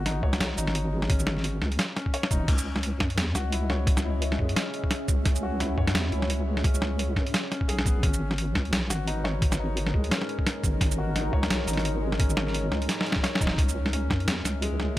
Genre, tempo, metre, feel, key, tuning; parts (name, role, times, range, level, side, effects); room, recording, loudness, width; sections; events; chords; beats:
half-time drum and bass; 173 BPM; 4/4; swing 57% on 16ths, half-time; C# dorian; A4 = 440 Hz
felt-muted upright piano; arpeggios; 0.0-15.0 s; G#3 to C#5; -34 LUFS; left 3 dB; vintage 12-bit sampler grit, tape echo
deep soft wobble bass; bass; 0.0-15.0 s; D#1 to F#2; -28 LUFS; equal; chorus
boom bap sampler-style drum kit; drums; 0.1-14.9 s; crash cymbal, hi-hat, shaker, snare drum; -28 LUFS; equal
electronic kick drum; drums; 0.2-14.2 s; -26 LUFS; equal
deep dark ambient pad; sustained chords; 3.4-15.0 s; G#3 to E5; -36 LUFS; equal; chorus, built-in reverb, sidechain pumping
little or no reverb; -24 LUFS; side -15 dB against mid
0.0-13.6 A section; 13.6-15.0 A section
drop 0.0-13.6, 13.6-15.0; drum fill 12.9-13.6
0.0 G#7(no3); 2.5 C#madd9; 8.0 G#m7; 13.6 C#madd9
0.06 0.40 0.75 | 1.09 1.44 1.79 2.14 | 2.48 2.83 3.18 3.52 | 3.87 4.22 4.56 4.91 | 5.26 5.60 5.95 6.30 | 6.64 6.99 7.34 7.68 | 8.03 8.38 8.73 9.07 | 9.42 9.77 10.11 10.46 | 10.81 11.15 11.50 11.85 | 12.19 12.54 12.89 13.23 | 13.58 13.93 14.28 14.62 | 14.97